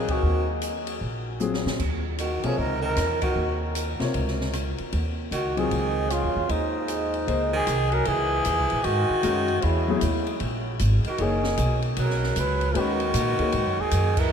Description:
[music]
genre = modal jazz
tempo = 153 BPM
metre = 4/4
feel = swing 64% on 8ths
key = C# dorian from 8.1 s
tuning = A4 = 440 Hz
[part]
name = growling trumpet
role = melody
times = 0.0-14.3 s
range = Eb4 to B4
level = -27 LUFS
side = equal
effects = none
[part]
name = edgy tenor saxophone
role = second line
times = 0.0-14.3 s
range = Ab2 to Gb3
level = -30 LUFS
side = right 3 dB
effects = none
[part]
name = warm baby grand piano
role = accompaniment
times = 0.0-13.5 s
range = C3 to F5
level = -30 LUFS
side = left 4 dB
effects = none
[part]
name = upright bass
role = bass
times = 0.0-14.3 s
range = F#1 to Bb2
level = -27 LUFS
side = equal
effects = none
[part]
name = open jazz drum kit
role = drums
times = 0.1-14.2 s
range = crash cymbal, hi-hat, kick drum, ride cymbal, rim click, snare drum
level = -33 LUFS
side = left 1 dB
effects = none
[sound]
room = wet cathedral reverb, RT60 5.8 s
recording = in a vast, echoing space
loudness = -22 LUFS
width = side -7 dB against mid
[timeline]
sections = 0.0-8.1 A section; 8.1-14.3 B section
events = band accent 0.0, 3.2, 14.1; drum fill 1.4-1.8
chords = 0.0 Ebm; 1.8 Absus4; 8.1 C#m69; 11.2 B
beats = | 0.23 0.62 1.01 1.40 | 1.80 2.19 2.58 2.97 | 3.36 3.76 4.15 4.54 | 4.93 5.32 5.71 6.11 | 6.50 6.89 7.28 7.67 | 8.06 8.46 8.85 9.24 | 9.63 10.02 10.41 10.80 | 11.19 11.58 11.97 12.36 | 12.75 13.14 13.53 13.92 | 14.31

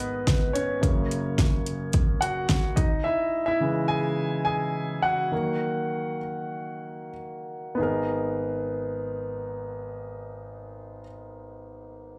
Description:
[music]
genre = piano-driven pop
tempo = 92-108 BPM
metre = 4/4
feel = straight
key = G# minor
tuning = A4 = 440 Hz
[part]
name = warm concert grand piano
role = accompaniment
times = 0.0-12.2 s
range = G#1 to G#5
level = -30 LUFS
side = equal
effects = plate reverb, slapback echo
[part]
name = deep house drum kit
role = drums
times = 0.0-2.9 s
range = hi-hat, kick drum, snare drum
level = -26 LUFS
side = equal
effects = overdrive
[sound]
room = moderate club reverb, RT60 0.7 s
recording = live gig heard through the venue's PA, club reverb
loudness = -27 LUFS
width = mono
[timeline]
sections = 0.0-7.8 A section; 7.8-10.4 B section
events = grand piano solo 0.0-7.8; slowing down 3.0-7.8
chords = 0.0 G#m; 0.8 F#; 2.8 C#m; 5.3 D#m; 7.8 G#madd9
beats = 0.27 | 0.83 1.38 1.94 2.49 | 3.05 3.61 4.17 4.74 | 5.32 5.91 6.51 7.14 | 7.78 8.44 9.09 9.74

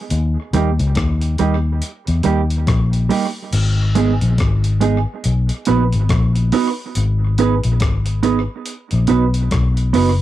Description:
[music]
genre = roots reggae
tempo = 70 BPM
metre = 4/4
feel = swing 60% on 16ths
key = G# minor from 3.5 s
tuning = A4 = 440 Hz
[part]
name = vintage muted fingered electric bass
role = bass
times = 0.1-10.2 s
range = F#1 to E2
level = -16 LUFS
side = left 1 dB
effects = none
[part]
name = breakbeat sampler-style drum kit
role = drums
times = 0.1-10.2 s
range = crash cymbal, hi-hat, kick drum, rim click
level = -24 LUFS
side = left 1 dB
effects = cassette tape, tape echo
[part]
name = mellow electric guitar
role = accompaniment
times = 0.5-10.1 s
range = G3 to B4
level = -19 LUFS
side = right 7 dB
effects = cassette tape, dub echo
[sound]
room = light reverb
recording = home recording on cassette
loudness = -15 LUFS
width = side -13 dB against mid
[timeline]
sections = 0.0-3.5 A section; 3.5-10.2 B section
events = none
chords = 0.1 D#; 3.5 G#m; 5.2 B; 7.0 G#m; 8.7 B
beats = | 0.11 0.96 1.82 2.68 | 3.53 4.39 5.24 6.10 | 6.95 7.81 8.66 9.52

